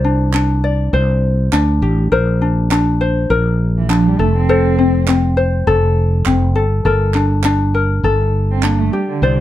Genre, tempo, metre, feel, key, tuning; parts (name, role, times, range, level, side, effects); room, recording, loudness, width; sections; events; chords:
acoustic pop; 101 BPM; 4/4; swing 60% on 16ths; A4 = 438 Hz
ukulele; accompaniment; 0.0-9.4 s; C4 to D5; -17 LUFS; left 3 dB
mellow fretless electric bass; bass; 0.0-9.4 s; F1 to D2; -15 LUFS; equal
group handclap; percussion; 0.3-8.8 s; -24 LUFS; right 7 dB
dark cello; second line; 3.8-9.4 s; D3 to C4; -20 LUFS; right 7 dB
light reverb; -13 LUFS; side -13 dB against mid
0.0-9.2 A section
0.0 Csus2; 2.1 Bbadd9; 4.2 F; 6.6 Gmadd9